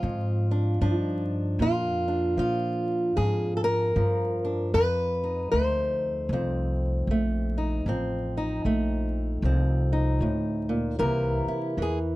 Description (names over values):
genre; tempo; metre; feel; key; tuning
acoustic country blues, solo or duo; 76 BPM; 4/4; swing 61% on 8ths; F mixolydian; A4 = 440 Hz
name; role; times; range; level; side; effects
fingerpicked old ladder-braced acoustic guitar; melody; 0.0-12.2 s; F2 to C5; -26 LUFS; equal; none
upright bass; bass; 0.0-12.2 s; A1 to Bb2; -28 LUFS; equal; none
room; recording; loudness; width
little or no reverb; dry, close 1970s-style studio recording, vinyl crackle; -24 LUFS; side -18 dB against mid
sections
0.0-12.2 A section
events
none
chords
0.0 Bb7; 4.7 F7; 11.0 C7